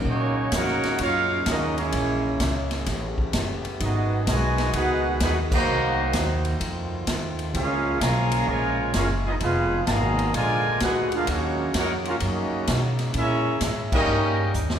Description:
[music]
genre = jazz, big band swing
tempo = 128 BPM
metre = 4/4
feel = swing 67% on 8ths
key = Eb minor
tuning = A4 = 441 Hz
[part]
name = clear trombone section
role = sustained chords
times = 0.0-14.8 s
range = Cb3 to G4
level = -33 LUFS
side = equal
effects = none
[part]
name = upright bass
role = bass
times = 0.0-14.8 s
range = F1 to Cb3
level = -27 LUFS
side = equal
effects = none
[part]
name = mellow trumpet section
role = melody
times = 0.1-14.5 s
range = Bb3 to Bb5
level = -26 LUFS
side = equal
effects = none
[part]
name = clear trombone section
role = second line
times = 0.1-14.5 s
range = Cb3 to Gb4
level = -28 LUFS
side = right 2 dB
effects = none
[part]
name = swinging big-band drum kit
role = drums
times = 0.1-14.8 s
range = crash cymbal, hi-hat, kick drum, ride cymbal, snare drum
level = -29 LUFS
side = equal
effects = none
[sound]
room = wet concert hall reverb, RT60 2.4 s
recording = recorded in a church or concert hall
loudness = -21 LUFS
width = side -9 dB against mid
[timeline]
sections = 0.1-14.8 A section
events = band accent 5.4, 13.8; drum fill 14.5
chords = 0.1 Ebm7; 1.9 Bbm7b5; 2.9 A9; 3.8 Abm7; 5.7 Cm7b5; 6.6 F7; 7.5 Bbm7; 9.4 Fm7b5; 10.3 Bb7; 11.3 Ebm7; 13.1 Bbm7b5; 14.1 Eb7

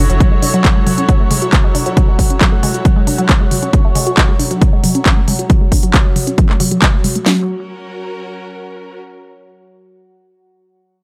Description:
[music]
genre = driving peak-time techno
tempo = 136 BPM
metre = 4/4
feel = straight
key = F# minor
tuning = A4 = 441 Hz
[part]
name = resonant blip pluck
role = riff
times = 0.0-7.5 s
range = F#3 to F#4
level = -21 LUFS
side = equal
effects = phaser, subtle chorus, sidechain pumping, tape echo
[part]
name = overtone-sweeping drone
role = drone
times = 0.0-7.3 s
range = F#3 to F#4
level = -26 LUFS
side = equal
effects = chorus, built-in reverb, sidechain pumping
[part]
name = clear studio string section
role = texture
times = 0.0-9.0 s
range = C#4 to C#5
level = -32 LUFS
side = equal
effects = sidechain pumping
[part]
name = techno drum kit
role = drums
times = 0.1-7.2 s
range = handclaps, hi-hat, toms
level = -20 LUFS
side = equal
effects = overdrive
[part]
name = techno drum kit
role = drums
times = 0.2-7.4 s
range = handclaps, kick drum, snare drum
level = -14 LUFS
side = equal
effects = overdrive
[sound]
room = light reverb, small room ambience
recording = none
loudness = -13 LUFS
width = mono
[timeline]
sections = 0.0-7.3 A section; 7.3-9.0 B section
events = fade-out on string section 0.0-7.3; filter sweep on synth arpeggio sound 0.0-7.3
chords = 0.0 F#m; 7.3 F#

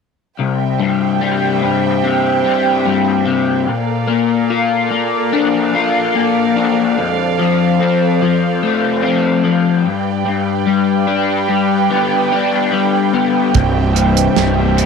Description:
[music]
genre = psychedelic rock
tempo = 73 BPM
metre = 4/4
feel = straight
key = C mixolydian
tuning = A4 = 440 Hz
[part]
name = warm chamber string section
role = sustained chords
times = 0.4-14.9 s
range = G4 to G5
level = -18 LUFS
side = right 12 dB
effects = none
[part]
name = crunchy overdriven guitar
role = riff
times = 0.4-14.9 s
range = C2 to F4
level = -14 LUFS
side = left 8 dB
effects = rotary speaker
[part]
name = fuzz fingered electric bass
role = bass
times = 13.5-14.9 s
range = C1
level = -15 LUFS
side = right 2 dB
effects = overdrive
[part]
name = damped 70s drum kit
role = drums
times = 13.5-14.9 s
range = hi-hat, kick drum, snare drum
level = -17 LUFS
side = right 6 dB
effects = none
[sound]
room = moderate spring reverb, RT60 2.6 s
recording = 1960s-style stereo with parts hard left and right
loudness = -13 LUFS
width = side -5 dB against mid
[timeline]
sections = 0.4-14.9 A section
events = none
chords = 0.4 C; 3.7 Bbmaj7; 7.0 F6; 9.9 G; 13.6 C

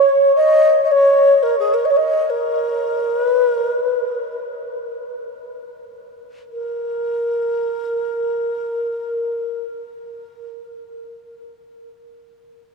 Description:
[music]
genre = world meditative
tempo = free time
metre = none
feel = none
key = Bb minor pentatonic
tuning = A4 = 442 Hz
[part]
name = breathy mellow xiao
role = solo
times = 0.0-10.5 s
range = Ab4 to Eb5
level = -16 LUFS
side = equal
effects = tape echo
[sound]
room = wet huge ambient reverb, RT60 7.2 s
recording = none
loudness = -16 LUFS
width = side -3 dB against mid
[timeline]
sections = 0.0-6.5 A section; 6.5-10.2 B section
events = none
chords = none

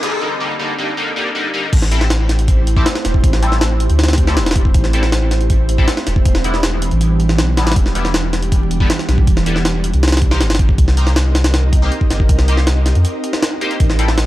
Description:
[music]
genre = drum and bass, jungle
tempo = 159 BPM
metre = 4/4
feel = straight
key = A minor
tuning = A4 = 439 Hz
[part]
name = ethereal airy pad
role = sustained chords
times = 0.0-14.3 s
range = E3 to Eb5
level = -23 LUFS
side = right 2 dB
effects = ensemble chorus, built-in reverb
[part]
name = band-passed chord stab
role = stabs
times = 0.0-14.1 s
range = D3 to C5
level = -23 LUFS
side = left 1 dB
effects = phaser, ensemble chorus, dub echo
[part]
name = jungle sampler-style drum kit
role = drums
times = 0.0-14.3 s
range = crash cymbal, hi-hat, kick drum, snare drum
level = -16 LUFS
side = equal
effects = high-pass filter on hats, high-pass filter on kick, high-pass filter on snare, high-pass filter on cymbals, high-pass filter on room
[part]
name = soft dub sub bass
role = bass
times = 1.7-14.3 s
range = E1 to F2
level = -15 LUFS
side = equal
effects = none
[sound]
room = digital ambience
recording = dry, gritty hardware recording, vinyl crackle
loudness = -12 LUFS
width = side -16 dB against mid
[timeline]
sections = 0.0-1.7 A section; 1.7-14.3 B section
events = build-up 0.0-1.7; drop 1.7-14.3; break 13.0-13.8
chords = 0.0 Cm7; 1.7 Am7; 6.3 Em7; 10.0 Cm7

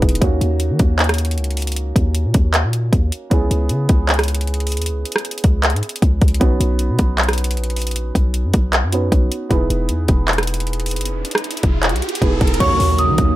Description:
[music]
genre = hip hop, trap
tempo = 155 BPM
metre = 4/4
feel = half-time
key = Eb phrygian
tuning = A4 = 442 Hz
[part]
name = dark grand piano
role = accompaniment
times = 0.0-13.4 s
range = Bb3 to B4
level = -25 LUFS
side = right 3 dB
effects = none
[part]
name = warm 808-style bass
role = bass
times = 0.0-13.4 s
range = E1 to Eb3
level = -18 LUFS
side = equal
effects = none
[part]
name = trap drum kit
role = drums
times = 0.0-13.3 s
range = crash cymbal, handclaps, hi-hat, kick drum, rim click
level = -18 LUFS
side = equal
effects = none
[part]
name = riser and impact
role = sound effects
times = 10.6-13.4 s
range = none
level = -26 LUFS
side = right 1 dB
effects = none
[part]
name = celesta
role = melody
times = 12.6-13.4 s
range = Db6 to Eb6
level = -17 LUFS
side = equal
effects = none
[part]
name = glassy wavetable pluck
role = second line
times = 12.6-13.0 s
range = Db5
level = -28 LUFS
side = right 4 dB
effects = chorus, tape echo
[part]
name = airy breathy pad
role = sustained chords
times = 12.6-13.4 s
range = Db3 to Eb4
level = -24 LUFS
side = right 2 dB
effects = chorus
[sound]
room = digital ambience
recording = none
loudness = -15 LUFS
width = side -16 dB against mid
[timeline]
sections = 0.0-12.6 A section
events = riser 10.6-12.6; impact 12.6-13.4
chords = 0.2 Ebm7; 3.3 Dbm7; 6.4 Badd9; 9.5 Emaj7; 12.6 Ebm7

